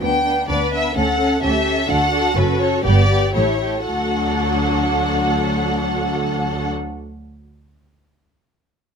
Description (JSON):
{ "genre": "quick classical-period movement for string orchestra", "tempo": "111-130 BPM", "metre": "2/4", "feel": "rubato", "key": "D major", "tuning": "A4 = 435 Hz", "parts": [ { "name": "rich studio violin section", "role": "melody", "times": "0.0-6.7 s", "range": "B4 to G5", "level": "-22 LUFS", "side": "left 2 dB", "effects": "none" }, { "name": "warm studio violin section", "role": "second line", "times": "0.0-6.7 s", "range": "A3 to A4", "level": "-22 LUFS", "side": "right 1 dB", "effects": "none" }, { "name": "clear studio cello section", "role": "bass", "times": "0.0-6.7 s", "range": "D2 to A2", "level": "-26 LUFS", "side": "left 1 dB", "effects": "none" }, { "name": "clear studio double bass section", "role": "bass", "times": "0.0-6.7 s", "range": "F#1 to D2", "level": "-23 LUFS", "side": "right 1 dB", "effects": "none" }, { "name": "warm studio viola section", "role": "accompaniment", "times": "0.5-6.7 s", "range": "F#3 to B4", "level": "-24 LUFS", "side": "left 2 dB", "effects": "none" } ], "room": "light reverb", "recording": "close, detailed microphones", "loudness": "-16 LUFS", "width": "side -6 dB against mid", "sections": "0.0-3.9 A section; 3.9-5.9 B section", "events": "slowing down 1.4-3.9", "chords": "0.0 G/D; 1.0 A7/D; 1.9 D; 2.4 F#m; 2.8 G; 3.3 A7; 3.9 D", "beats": "| 0.01 0.49 | 0.97 1.43 | 1.90 2.37 | 2.85 3.35 | 3.88 4.39 | 4.90 5.41" }